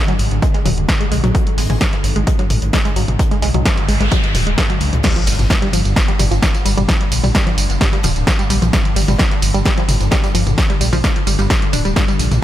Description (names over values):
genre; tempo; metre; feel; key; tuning
driving peak-time techno; 130 BPM; 4/4; straight; G phrygian; A4 = 440 Hz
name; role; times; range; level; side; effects
swarming drone; drone; 0.1-12.4 s; G2 to D3; -26 LUFS; equal; built-in reverb, ensemble chorus, sidechain pumping
wide unison pluck; riff; 0.1-12.1 s; F3 to D4; -22 LUFS; equal; tube saturation, sidechain pumping, ping-pong delay
punchy analog drum machine; drums; 0.1-12.4 s; crash cymbal, hi-hat, ride cymbal, snare drum, tambourine, toms; -19 LUFS; equal; none
vintage brush drum kit; drums; 0.1-12.4 s; hi-hat, snare drum; -32 LUFS; left 1 dB; none
dark detuned saw bass; bass; 0.2-12.4 s; D1 to C#2; -18 LUFS; equal; sidechain pumping
electronic kick drum; drums; 0.4-12.1 s; none; -17 LUFS; equal; none
noise sweep and impact; sound effects; 3.6-6.9 s; none; -26 LUFS; equal; none
room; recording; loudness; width
light reverb, digital ambience; none; -13 LUFS; side -12 dB against mid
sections
0.0-5.0 A section; 5.0-12.4 B section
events
noise sweep 3.6-5.0; drop 5.0-12.4; impact 5.0-6.9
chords
0.0 Ab5; 5.0 Gm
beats
0.42 0.89 | 1.35 1.81 2.27 2.73 | 3.19 3.65 4.12 4.58 | 5.04 5.50 5.96 6.42 | 6.88 7.35 7.81 8.27 | 8.73 9.19 9.65 10.12 | 10.58 11.04 11.50 11.96 | 12.42